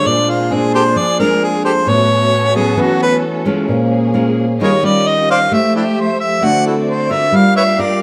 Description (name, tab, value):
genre	bossa nova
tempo	132 BPM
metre	4/4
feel	straight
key	unclear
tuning	A4 = 440 Hz
part	mellow harmonica	melody	0.0-8.0 s	D4 to F#5	-16 LUFS	equal	plate reverb
part	nylon-string guitar	accompaniment	0.0-8.0 s	A2 to Bb4	-18 LUFS	equal	none
part	vibraphone with soft mallets	accompaniment	0.0-8.0 s	F3 to F5	-24 LUFS	equal	none
part	muted studio string section	sustained chords	0.0-8.0 s	A3 to F5	-26 LUFS	equal	none
room	moderate studio reverb, RT60 0.6 s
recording	none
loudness	-14 LUFS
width	mono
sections	0.0-8.0 A section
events	harmonica solo 0.0-8.0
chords	0.0 Bb9; 1.9 A69; 3.7 Bbm7; 4.6 Eb9; 5.5 Fmaj9; 6.4 D7; 7.3 Gm7